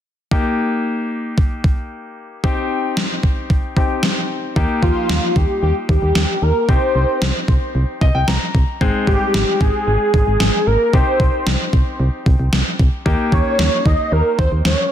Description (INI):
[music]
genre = synth-pop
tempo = 113 BPM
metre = 4/4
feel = straight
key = Eb major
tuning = A4 = 440 Hz
[part]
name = clear concert grand piano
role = accompaniment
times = 0.3-14.9 s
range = Ab3 to Bb5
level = -23 LUFS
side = left 3 dB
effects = none
[part]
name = gated 80s digital drum machine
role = drums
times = 0.3-14.8 s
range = kick drum, snare drum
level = -17 LUFS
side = equal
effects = gated reverb, gated reverb snare, overdrive
[part]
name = solid FM bass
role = bass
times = 4.6-14.8 s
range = Ab1 to Eb2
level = -18 LUFS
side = equal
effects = none
[part]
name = wide unison lead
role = melody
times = 4.8-14.9 s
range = F4 to Eb5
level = -19 LUFS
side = equal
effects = digital delay
[sound]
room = light reverb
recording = dense, heavily limited modern master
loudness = -15 LUFS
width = side -10 dB against mid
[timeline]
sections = 0.3-4.6 A section; 4.6-14.9 B section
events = grand piano fill 7.7-8.8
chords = 0.3 Eb; 2.4 Cm; 4.6 Eb; 6.7 Cm; 8.8 Ab; 10.9 Cm; 13.1 Eb